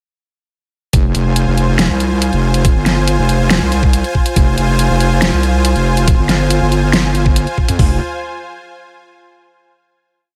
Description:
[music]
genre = heavy wobble dubstep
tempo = 140 BPM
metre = 4/4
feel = half-time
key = F minor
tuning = A4 = 441 Hz
[part]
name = supersaw pad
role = sustained chords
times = 0.9-8.0 s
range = F4 to Ab5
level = -22 LUFS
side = equal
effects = sidechain pumping
[part]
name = wobble bass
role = bass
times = 0.9-8.0 s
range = F1 to F2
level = -16 LUFS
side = equal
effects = chorus, overdrive
[part]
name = dubstep drum kit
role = drums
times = 0.9-7.9 s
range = hi-hat, kick drum, toms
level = -15 LUFS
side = equal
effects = studio reverb
[part]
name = dubstep drum kit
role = drums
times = 0.9-7.8 s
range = hi-hat, snare drum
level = -19 LUFS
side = equal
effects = overdrive, studio reverb
[sound]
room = digital ambience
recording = none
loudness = -14 LUFS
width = mono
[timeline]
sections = 0.9-7.8 drop; 7.8-9.5 final chord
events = drop 0.9-7.8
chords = 0.9 Fm

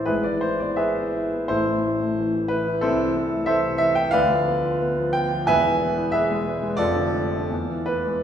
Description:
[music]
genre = classical, romantic character piece for solo piano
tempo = 75-93 BPM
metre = 2/4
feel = rubato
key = A minor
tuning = A4 = 440 Hz
[part]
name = warm concert grand piano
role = solo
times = 0.0-8.2 s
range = E1 to G#5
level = -20 LUFS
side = equal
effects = none
[sound]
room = wet recital hall reverb, RT60 1.6 s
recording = heard from further back in the room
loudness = -20 LUFS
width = side -8 dB against mid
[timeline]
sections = 0.0-8.2 A section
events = none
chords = 0.1 E/G#; 1.5 Am; 2.8 Am/C; 4.2 Bdim/D; 5.5 E; 6.8 Dm/F; 7.5 E7

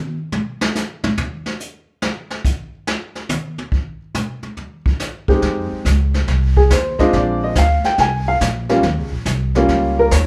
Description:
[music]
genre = jazz piano trio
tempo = 141 BPM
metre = 4/4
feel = swing 67% on 8ths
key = Eb mixolydian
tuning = A4 = 439 Hz
[part]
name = vintage brush drum kit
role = drums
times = 0.3-10.3 s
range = brushed snare drum, hi-hat, kick drum, snare drum, toms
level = -23 LUFS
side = equal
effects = none
[part]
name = warm upright piano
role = melody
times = 5.3-10.3 s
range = G3 to Ab5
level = -18 LUFS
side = equal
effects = none
[part]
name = upright bass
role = bass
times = 5.4-10.3 s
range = Bb1 to F2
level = -20 LUFS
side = equal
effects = none
[sound]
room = light reverb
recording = band playing live in one room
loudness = -19 LUFS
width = mono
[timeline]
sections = 0.0-10.3 A section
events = upright piano solo 0.0-10.3; drum solo 0.0-5.4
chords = 0.0 N.C.; 5.4 Fm7; 7.1 Bb7; 8.8 Eb7

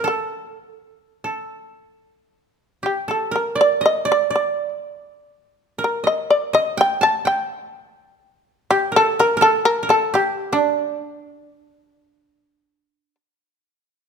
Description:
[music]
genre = japanese traditional, Japanese chamber music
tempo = 71-85 BPM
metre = 4/4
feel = rubato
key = D miyako bushi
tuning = A4 = 441 Hz
[part]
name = shamisen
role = melody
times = 0.0-13.1 s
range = D4 to A5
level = -18 LUFS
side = left 2 dB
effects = none
[part]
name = koto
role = second line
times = 0.0-13.1 s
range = D4 to A5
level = -21 LUFS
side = right 4 dB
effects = none
[sound]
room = light reverb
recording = close, detailed microphones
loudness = -17 LUFS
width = side -6 dB against mid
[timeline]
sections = 0.0-14.0 A section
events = none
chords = none

